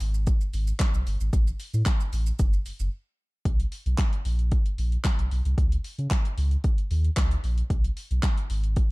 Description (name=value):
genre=dance-pop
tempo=113 BPM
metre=4/4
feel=straight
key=unclear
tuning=A4 = 442 Hz
part: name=sub bass with octave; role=bass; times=0.0-8.8 s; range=F#1 to C#3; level=-25 LUFS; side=equal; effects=sidechain pumping
part: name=deep house drum kit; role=drums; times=0.0-8.9 s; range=handclaps, hi-hat, kick drum, shaker, snare drum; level=-25 LUFS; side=equal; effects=overdrive
room=little or no reverb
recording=dark, warm production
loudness=-23 LUFS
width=side -23 dB against mid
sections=0.0-3.5 A section; 3.5-8.9 B section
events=break 2.9-3.5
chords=none